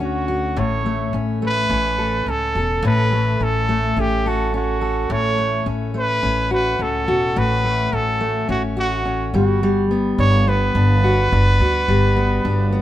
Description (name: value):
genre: pop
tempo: 106 BPM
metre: 4/4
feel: straight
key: unclear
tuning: A4 = 441 Hz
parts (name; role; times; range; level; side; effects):
- breathy trumpet; melody; 0.0-12.8 s; F#4 to C#5; -21 LUFS; right 2 dB; none
- fingerpicked steel-string acoustic guitar; accompaniment; 0.0-12.8 s; A2 to A4; -21 LUFS; left 2 dB; none
- upright bass; bass; 0.0-12.8 s; E1 to D2; -22 LUFS; equal; none
room: little or no reverb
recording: minimal, uncompressed stereo recording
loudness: -16 LUFS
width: side -13 dB against mid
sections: 0.0-12.8 A section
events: none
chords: 0.0 Dmaj7; 0.6 A; 5.1 A69; 9.3 Gmaj7